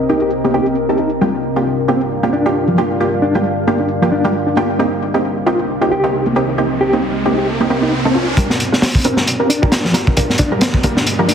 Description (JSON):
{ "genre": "breakbeat, breaks", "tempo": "134 BPM", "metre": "4/4", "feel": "swing 56% on 16ths", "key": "G minor", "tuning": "A4 = 442 Hz", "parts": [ { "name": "deep dark ambient pad", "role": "sustained chords", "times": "0.0-11.3 s", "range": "C3 to F5", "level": "-20 LUFS", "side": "left 1 dB", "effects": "chorus, built-in reverb, sidechain pumping" }, { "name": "reed electric piano", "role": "riff", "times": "0.1-11.3 s", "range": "F3 to G4", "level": "-18 LUFS", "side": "left 1 dB", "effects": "tremolo, low-pass filter, ping-pong delay" }, { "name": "orchestra-hit-like synth stab", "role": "stabs", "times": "0.1-11.2 s", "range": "Bb3 to Bb4", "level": "-18 LUFS", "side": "right 2 dB", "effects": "built-in reverb, ping-pong delay" }, { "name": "riser", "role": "sound effects", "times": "5.8-11.3 s", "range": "none", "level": "-24 LUFS", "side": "right 2 dB", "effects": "none" }, { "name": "crunchy breakbeat drum kit", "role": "drums", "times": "8.4-11.3 s", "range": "hi-hat, kick drum, snare drum", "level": "-14 LUFS", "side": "equal", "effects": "none" } ], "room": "moderate plate reverb, RT60 1.9 s, studio reverb", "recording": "heavily compressed radio sound", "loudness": "-13 LUFS", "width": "side -7 dB against mid", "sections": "0.0-8.4 A section; 8.4-11.3 B section", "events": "riser 5.8-8.4, 8.4-11.3; build-up 8.4-11.3", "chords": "0.0 Cm7; 1.2 Gm7; 4.8 Cm7; 8.4 Gm7" }